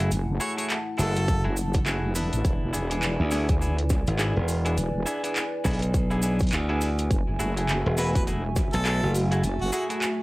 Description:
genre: glitch hop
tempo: 103 BPM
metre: 4/4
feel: swing 59% on 16ths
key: F# minor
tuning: A4 = 440 Hz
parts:
  - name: dark analog pad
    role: sustained chords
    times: 0.0-10.2 s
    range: A3 to A5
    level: -32 LUFS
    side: equal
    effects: chorus, vintage 12-bit sampler grit, sidechain pumping
  - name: semi-hollow electric guitar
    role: stabs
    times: 0.0-10.1 s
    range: A3 to B4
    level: -32 LUFS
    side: equal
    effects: sidechain pumping, tape echo
  - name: glassy slap bass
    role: bass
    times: 0.0-9.4 s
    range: E1 to D2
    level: -24 LUFS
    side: equal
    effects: none
  - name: drum and bass drum kit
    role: drums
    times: 0.0-10.2 s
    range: handclaps, hi-hat, snare drum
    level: -32 LUFS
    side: equal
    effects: cassette tape
  - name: wobble bass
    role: bass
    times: 0.1-9.7 s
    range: E1 to D2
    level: -27 LUFS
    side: equal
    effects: chorus, tube saturation
  - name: cabasa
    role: percussion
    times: 0.1-10.2 s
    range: none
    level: -38 LUFS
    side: right 2 dB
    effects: none
  - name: clear harmonica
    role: melody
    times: 0.4-1.5, 8.0-9.8 s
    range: F#4 to C#5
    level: -33 LUFS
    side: equal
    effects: tape echo
  - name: electronic kick drum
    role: drums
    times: 1.3-8.7 s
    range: none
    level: -25 LUFS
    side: equal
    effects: overdrive, cassette tape
room: light reverb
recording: home recording on cassette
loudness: -23 LUFS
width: side -20 dB against mid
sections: 0.0-10.2 A section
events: none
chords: 0.0 F#m9; 2.4 E7; 7.1 F#m9

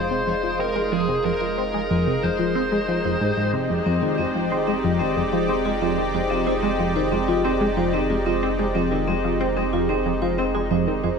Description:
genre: ambient, sequencer-driven space music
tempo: 92 BPM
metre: 4/4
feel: straight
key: F dorian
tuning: A4 = 440 Hz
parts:
  - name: bluesy overdriven lead guitar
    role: melody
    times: 0.0-3.5 s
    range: Ab4 to C5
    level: -27 LUFS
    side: left 1 dB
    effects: distortion, tape echo
  - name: lush unison pad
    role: sustained chords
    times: 0.0-11.2 s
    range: Ab3 to D5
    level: -25 LUFS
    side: equal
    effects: chorus
  - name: tight sequenced synth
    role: riff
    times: 0.0-11.1 s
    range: F2 to C4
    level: -24 LUFS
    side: equal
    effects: chorus, phaser, tape echo
  - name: warm sub bass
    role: bass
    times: 0.0-11.2 s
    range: F1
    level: -33 LUFS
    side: equal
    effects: none
  - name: vibraphone with hard mallets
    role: arpeggios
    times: 3.9-11.2 s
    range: C4 to C5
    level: -27 LUFS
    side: moving between left 3 dB and right 6 dB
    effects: auto-pan, tape echo
room: wet spring reverb, RT60 2.5 s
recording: echo-heavy mix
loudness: -20 LUFS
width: side -5 dB against mid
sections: 0.0-11.2 A section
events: fade-in on sub bass 0.0-11.2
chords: 0.0 Fm7

